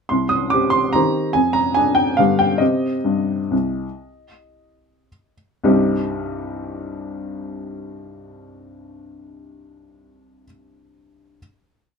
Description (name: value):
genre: classical, piano waltz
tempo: 98-149 BPM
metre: 3/4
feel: rubato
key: C minor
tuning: A4 = 440 Hz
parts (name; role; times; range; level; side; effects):
- clear upright piano; solo; 0.1-11.4 s; C2 to Eb6; -17 LUFS; equal; none
room: light reverb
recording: close, detailed microphones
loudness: -17 LUFS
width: side -5 dB against mid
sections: 0.1-5.6 A section; 5.6-9.2 final chord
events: slowing down 2.0-5.6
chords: 0.1 Cm; 1.4 Ddim/F; 2.2 G7; 2.6 Cm